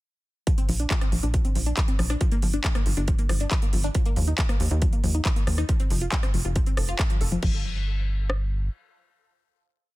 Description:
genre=uplifting trance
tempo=138 BPM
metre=4/4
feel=straight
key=unclear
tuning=A4 = 440 Hz
part: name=wide unison pluck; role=arpeggios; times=0.5-7.6 s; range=F3 to F5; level=-32 LUFS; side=left 2 dB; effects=sidechain pumping, dub echo
part: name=big-room dance drum kit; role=drums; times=0.5-8.4 s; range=kick drum, rim click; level=-24 LUFS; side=equal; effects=soft clipping on snare
part: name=big-room dance drum kit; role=drums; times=0.5-7.5 s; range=crash cymbal, handclaps, hi-hat, rim click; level=-31 LUFS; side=equal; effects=soft clipping on snare
part: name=tight sequencer bass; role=bass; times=0.7-8.7 s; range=F1 to Eb2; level=-25 LUFS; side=equal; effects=sidechain pumping
room=little or no reverb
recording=dense, heavily limited modern master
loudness=-22 LUFS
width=side -18 dB against mid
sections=0.5-7.4 drop; 7.4-10.0 final chord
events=drop 0.5-7.4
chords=0.5 Bbadd9; 2.2 Gm7; 3.9 Ebsus2; 5.7 F5; 7.4 N.C.

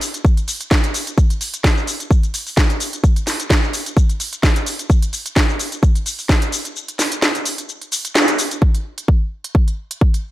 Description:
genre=house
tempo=129 BPM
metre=4/4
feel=swing 55% on 16ths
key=none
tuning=none
part: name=garage drum kit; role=drums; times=0.0-10.2 s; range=hi-hat, shaker, snare drum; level=-19 LUFS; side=equal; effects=none
part: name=electronic kick drum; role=drums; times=0.2-10.1 s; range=none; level=-14 LUFS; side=equal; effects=none
room=light reverb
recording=none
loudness=-15 LUFS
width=side -15 dB against mid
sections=0.0-8.6 A section; 8.6-10.3 B section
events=kick drops out 6.8-8.6; band accent 8.2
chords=none

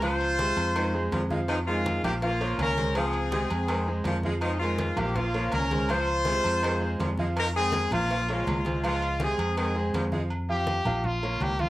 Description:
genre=latin, salsa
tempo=163 BPM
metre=4/4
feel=straight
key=F minor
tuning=A4 = 438 Hz
part: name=brilliant horn section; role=melody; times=0.0-9.9 s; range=Ab3 to C5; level=-28 LUFS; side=left 1 dB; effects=cassette tape
part: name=clear saxophone section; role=second line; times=0.0-10.2 s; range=C3 to Ab3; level=-36 LUFS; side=equal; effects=cassette tape
part: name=bright concert grand piano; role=accompaniment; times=0.0-11.7 s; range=F3 to F5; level=-32 LUFS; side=right 2 dB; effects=cassette tape
part: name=fingered electric bass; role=bass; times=0.0-11.7 s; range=Bb1 to F2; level=-30 LUFS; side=equal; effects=none
part: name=agogo bells and timbales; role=percussion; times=0.0-11.6 s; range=none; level=-37 LUFS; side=right 2 dB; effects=none
part: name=congas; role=percussion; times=0.0-11.7 s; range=none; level=-35 LUFS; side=equal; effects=none
part: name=cowbell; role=percussion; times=0.0-10.1 s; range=none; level=-40 LUFS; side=left 2 dB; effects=none
part: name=brilliant trumpet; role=melody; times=10.5-11.7 s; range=F4 to G4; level=-29 LUFS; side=left 1 dB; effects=cassette tape
room=moderate studio reverb, RT60 0.6 s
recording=home recording on cassette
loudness=-24 LUFS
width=side -16 dB against mid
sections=0.0-10.3 A section; 10.3-11.7 B section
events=trumpet solo 10.3-11.7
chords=0.0 Dbmaj7; 0.8 Fm7; 2.2 Bbm; 3.0 Dbmaj7; 3.7 Fm7; 5.2 Bbm; 5.9 Dbmaj7; 6.6 Fm7; 8.1 Bbm; 8.8 Dbmaj7; 9.6 Fm7; 10.3 Gm7; 11.0 Bbm

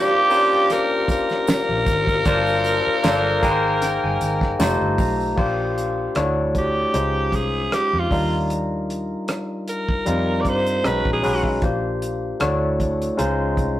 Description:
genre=lush 1970s-style soul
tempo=77 BPM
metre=4/4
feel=swing 54% on 16ths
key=Bb mixolydian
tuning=A4 = 435 Hz
part: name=raspy alto saxophone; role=melody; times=0.0-11.5 s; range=F4 to D5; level=-21 LUFS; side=equal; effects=slapback echo
part: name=barky tine electric piano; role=accompaniment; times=0.0-13.8 s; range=G3 to Bb5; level=-22 LUFS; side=left 1 dB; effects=none
part: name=cloth-damped thuddy drum kit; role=drums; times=0.3-13.8 s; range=crash cymbal, hi-hat, kick drum, rim click, snare drum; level=-24 LUFS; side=right 1 dB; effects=none
part: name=tambourine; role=percussion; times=0.3-5.4 s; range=none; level=-41 LUFS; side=right 4 dB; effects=none
part: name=vintage muted fingered electric bass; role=bass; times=1.7-13.8 s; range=F1 to G2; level=-26 LUFS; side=equal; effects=none
room=moderate studio reverb, RT60 0.6 s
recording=rough rehearsal-room recording, tube saturation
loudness=-18 LUFS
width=side -13 dB against mid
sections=0.0-5.4 A section; 5.4-13.8 B section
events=tine electric piano fill 3.0-5.4; alto saxophone solo 5.4-13.8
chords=0.0 Bb6; 2.3 Gm11; 3.4 Abmaj9; 4.6 F9; 5.4 Bb69; 6.2 Dmaj9; 6.9 Dbmaj9; 8.1 Ebmaj9; 10.1 F9sus4; 10.8 B69; 11.6 Bb69; 12.4 Dmaj9; 13.2 Dbmaj9

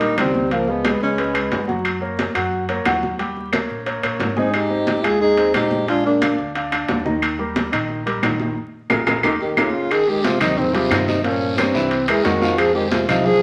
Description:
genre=Afro-Cuban jazz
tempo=179 BPM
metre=4/4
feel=straight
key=Eb major, Ab major from 9.9 s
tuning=A4 = 438 Hz
part: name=breathy tenor saxophone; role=melody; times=0.0-1.7, 4.4-6.4, 9.4-13.4 s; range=Bb3 to Ab4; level=-22 LUFS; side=equal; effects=none
part: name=breathy trombone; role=second line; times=0.0-1.6, 4.4-6.4, 9.4-13.4 s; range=G2 to F4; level=-26 LUFS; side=equal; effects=none
part: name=warm concert grand piano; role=accompaniment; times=0.0-13.4 s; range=Eb3 to Ab5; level=-26 LUFS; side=equal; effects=none
part: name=upright bass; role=bass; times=0.0-13.4 s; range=Ab1 to G2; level=-33 LUFS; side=equal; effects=none
part: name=congas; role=percussion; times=0.0-13.4 s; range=none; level=-29 LUFS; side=equal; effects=none
part: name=timbales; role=percussion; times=0.0-13.3 s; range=none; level=-28 LUFS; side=equal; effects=none
part: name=claves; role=percussion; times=0.2-13.3 s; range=none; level=-28 LUFS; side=equal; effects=none
part: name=guiro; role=percussion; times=9.9-13.4 s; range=none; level=-33 LUFS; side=equal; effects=none
room=wet studio reverb, RT60 0.9 s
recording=vinyl crackle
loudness=-19 LUFS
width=mono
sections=0.0-9.9 A section; 9.9-13.4 B section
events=drum fill 8.6-9.9; band accent 8.6-9.9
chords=0.0 Eb; 0.5 Db7; 1.9 Gb; 3.2 Eb7; 4.5 Abmaj7; 5.9 Bb7; 7.2 Eb; 8.6 Bb5; 9.2 Eb9; 9.9 Abmaj7; 11.2 Gm7b5; 11.9 C7alt; 12.6 Fm7

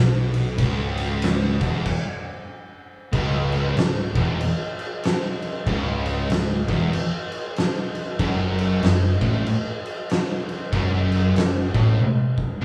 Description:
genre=stoner and doom metal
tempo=95 BPM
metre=4/4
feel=swing 61% on 8ths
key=C# minor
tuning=A4 = 440 Hz
part: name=thick fuzz guitar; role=riff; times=0.0-12.6 s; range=C#2 to B2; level=-27 LUFS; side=equal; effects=distortion
part: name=thick fuzz guitar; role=riff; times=0.0-12.6 s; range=C#2 to B2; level=-29 LUFS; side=equal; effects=distortion
part: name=modern bright picked electric bass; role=bass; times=0.0-12.6 s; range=C#1 to B1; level=-29 LUFS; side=equal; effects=tube saturation
part: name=oversized low-tuned drum kit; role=drums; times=0.3-12.5 s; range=crash cymbal, kick drum, ride cymbal, snare drum, toms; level=-26 LUFS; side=equal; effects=none
part: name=thick fuzz guitar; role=riff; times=3.1-12.6 s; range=C#2 to B2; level=-30 LUFS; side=equal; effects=distortion
room=light reverb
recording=band playing live in one room, small room reverb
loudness=-23 LUFS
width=mono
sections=0.0-3.1 A section; 3.1-12.6 B section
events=stop 1.9-3.1; drum fill 12.0-12.6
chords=0.0 C#m; 8.2 F#m

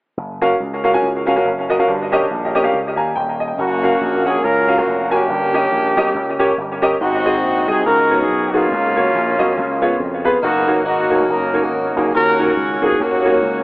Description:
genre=uptempo gospel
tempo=140 BPM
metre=4/4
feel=swing 58% on 8ths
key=F# major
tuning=A4 = 440 Hz
part: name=slap bass with an envelope filter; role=bass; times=0.2-13.6 s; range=D#1 to E#2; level=-25 LUFS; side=equal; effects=none
part: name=warm grand piano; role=accompaniment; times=0.4-13.4 s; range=G2 to A#5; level=-17 LUFS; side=equal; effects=tape echo
part: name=mellow horn section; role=melody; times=3.6-13.6 s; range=A#3 to A#4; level=-16 LUFS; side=equal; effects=tape echo
room=moderate plate reverb, RT60 3.2 s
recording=echo-heavy mix, telephone sound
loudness=-14 LUFS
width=side -22 dB against mid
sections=0.2-3.6 A section; 3.6-13.6 B section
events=grand piano fill 2.7-3.6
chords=0.2 F#maj7; 1.9 D#7/G; 3.6 F#maj7; 5.3 D#7/G; 7.0 G#7; 7.9 C#9sus4; 8.7 F#/C#; 9.6 C#7; 10.4 F#6; 12.1 D#m7

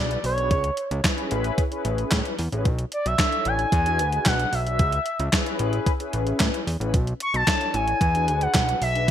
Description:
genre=early-eighties boogie funk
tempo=112 BPM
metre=4/4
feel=straight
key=unclear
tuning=A4 = 441 Hz
part: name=expressive portamento lead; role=melody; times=0.0-9.1 s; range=C#5 to C#6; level=-25 LUFS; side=equal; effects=chorus, ping-pong delay
part: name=mellow synth brass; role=accompaniment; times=0.0-9.1 s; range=C#4 to C#5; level=-30 LUFS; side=left 4 dB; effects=chorus
part: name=fat analog bass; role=bass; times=0.0-9.1 s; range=A1 to A2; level=-26 LUFS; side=equal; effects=none
part: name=crisp 8-bit digital drum machine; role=drums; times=0.1-9.1 s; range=handclaps, hi-hat, kick drum, snare drum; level=-23 LUFS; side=equal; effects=overdrive, gated reverb
room=light reverb, digital ambience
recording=bright 1980s-style digital production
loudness=-21 LUFS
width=side -10 dB against mid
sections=0.0-9.1 A section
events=none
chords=0.0 E7 (rootless); 0.5 C#m7; 1.3 Amaj9; 2.7 Bm11; 3.7 E7; 4.8 C#m7; 5.6 Amaj9; 6.9 Bm11; 8.0 E7

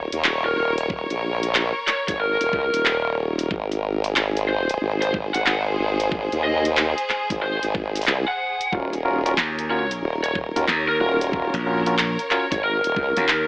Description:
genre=glitch hop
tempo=92 BPM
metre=4/4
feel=swing 63% on 16ths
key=Eb dorian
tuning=A4 = 440 Hz
part: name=formant-sweep wobble bass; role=bass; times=0.0-13.1 s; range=Eb1 to Eb2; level=-24 LUFS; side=equal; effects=chorus, tube saturation
part: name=bright studio string section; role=texture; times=0.0-13.5 s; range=Ab4 to Db5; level=-28 LUFS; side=equal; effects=sidechain pumping
part: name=dubstep drum kit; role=drums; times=0.1-13.5 s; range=handclaps, hi-hat, rim click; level=-23 LUFS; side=equal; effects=small room ambience
part: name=lead guitar through a small cranked amp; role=melody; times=0.5-13.5 s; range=Bb4 to Gb5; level=-25 LUFS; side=equal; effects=overdrive, vintage 12-bit sampler grit, tape echo
part: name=electronic kick drum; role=drums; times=0.9-13.1 s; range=none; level=-30 LUFS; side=equal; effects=small room ambience
part: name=barky tine electric piano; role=stabs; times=8.7-13.2 s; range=Db4 to Bb4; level=-25 LUFS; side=equal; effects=sidechain pumping, tape echo
part: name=slap bass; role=bass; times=9.4-13.5 s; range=Bb1 to Eb2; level=-24 LUFS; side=equal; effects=none
room=light reverb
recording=AM radio sound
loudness=-20 LUFS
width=side -28 dB against mid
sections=0.0-13.5 A section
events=none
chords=0.0 Eb5; 3.5 Ab; 8.7 Ebm7

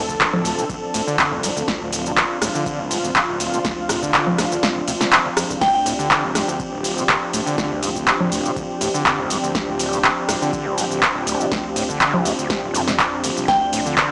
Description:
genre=acid house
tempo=122 BPM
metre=4/4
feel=swing 53% on 16ths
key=D minor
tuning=A4 = 440 Hz
part: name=lush unison pad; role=sustained chords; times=0.0-14.1 s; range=F3 to A4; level=-27 LUFS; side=equal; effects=chorus, vintage 12-bit sampler grit, sidechain pumping
part: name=overdriven acid bass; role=riff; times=0.0-14.1 s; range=D1 to D3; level=-29 LUFS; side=equal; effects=distortion, analog chorus, sidechain pumping, analog delay
part: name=round analog bass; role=bass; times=0.0-14.0 s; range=D1 to F2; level=-36 LUFS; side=equal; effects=sidechain pumping
part: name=electro analog drum machine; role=drums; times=0.1-14.1 s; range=congas, crash cymbal, handclaps, hi-hat, ride cymbal, rim click, shaker, snare drum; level=-22 LUFS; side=equal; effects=overdrive
part: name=electronic kick drum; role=drums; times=0.1-14.1 s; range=none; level=-37 LUFS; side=equal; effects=overdrive
part: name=soft synth bell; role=melody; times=5.6-5.8, 13.5-13.7 s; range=G5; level=-23 LUFS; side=equal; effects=chorus, analog delay
room=light reverb, digital ambience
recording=dry, gritty hardware recording, cassette tape, small speaker sound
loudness=-20 LUFS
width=mono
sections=0.0-14.1 A section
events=kick drops out 4.6-5.6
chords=0.0 Dm7

